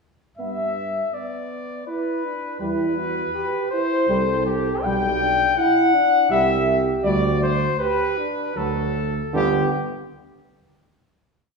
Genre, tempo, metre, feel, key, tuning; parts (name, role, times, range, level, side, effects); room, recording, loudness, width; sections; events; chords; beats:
classical, brass quintet; 80 BPM; 3/4; straight; G major; A4 = 440 Hz
warm trumpet; melody; 0.4-9.7 s; G4 to G5; -24 LUFS; left 5 dB
warm flugelhorn; second line; 0.4-9.7 s; G4 to G5; -26 LUFS; right 2 dB
clear euphonium; accompaniment; 0.4-9.7 s; D3 to B3; -28 LUFS; right 2 dB
mellow bass trombone; bass; 0.4-9.7 s; G1 to G2; -27 LUFS; right 3 dB
clear French horn; accompaniment; 1.1-9.7 s; B3 to A4; -25 LUFS; right 1 dB
wet recital hall reverb, RT60 1.4 s; heard from further back in the room; -19 LUFS; side -4 dB against mid
0.4-9.3 A section; 9.3-11.6 final chord
0.4 G; 2.6 Em; 4.1 C5; 4.8 G/B; 6.3 C; 7.0 Dsus4; 8.6 D; 9.3 G
| 0.39 1.14 1.88 | 2.61 3.35 4.08 | 4.84 5.57 6.30 | 7.05 7.79 8.56 | 9.34